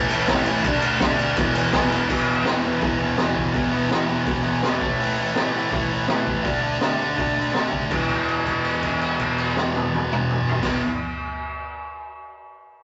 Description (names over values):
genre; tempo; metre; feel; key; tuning
garage rock duo or trio; 165 BPM; 4/4; straight; unclear; A4 = 440 Hz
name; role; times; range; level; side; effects
thick fuzz guitar; riff; 0.0-10.8 s; E2 to D4; -24 LUFS; equal; distortion
raw garage drum kit; drums; 0.1-10.7 s; crash cymbal, hi-hat, kick drum, ride cymbal, snare drum, toms; -26 LUFS; equal; none
room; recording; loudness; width
wet stone room reverb, RT60 1.3 s; rough rehearsal-room recording, warm saturation, nothing above 7.8 kHz; -22 LUFS; mono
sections
0.0-2.1 A section; 2.1-7.9 B section; 7.9-10.8 C section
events
held note 7.9-10.6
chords
0.0 A5; 0.6 D5; 1.4 E5; 4.8 A5; 6.5 D5; 7.9 E5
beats
0.29 | 0.65 1.01 1.37 1.73 | 2.09 2.45 2.81 3.17 | 3.54 3.90 4.26 4.63 | 4.99 5.36 5.72 6.08 | 6.45 6.82 7.18 7.55 | 7.91 8.28 8.64 9.01 | 9.38 9.74 10.11 10.48